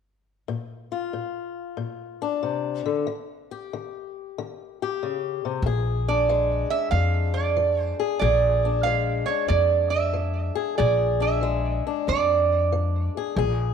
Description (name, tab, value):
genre	acoustic country blues, solo or duo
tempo	93 BPM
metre	4/4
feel	swing 66% on 8ths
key	Bb mixolydian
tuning	A4 = 440 Hz
part	fingerpicked swing-style acoustic guitar	accompaniment	0.5-13.7 s	F2 to Ab4	-28 LUFS	left 10 dB	none
part	upright bass	bass	5.6-13.7 s	Bb1 to F2	-24 LUFS	left 1 dB	transformer saturation
part	lap resonator guitar	melody	6.1-12.7 s	Db5 to F5	-23 LUFS	right 8 dB	tape echo
room	wet echo chamber reverb, RT60 1.3 s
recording	1960s-style stereo with parts hard left and right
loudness	-22 LUFS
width	side -7 dB against mid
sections	0.5-5.6 A section; 5.6-13.7 B section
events	none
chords	0.5 Bb; 3.1 Eb7; 5.6 Bb7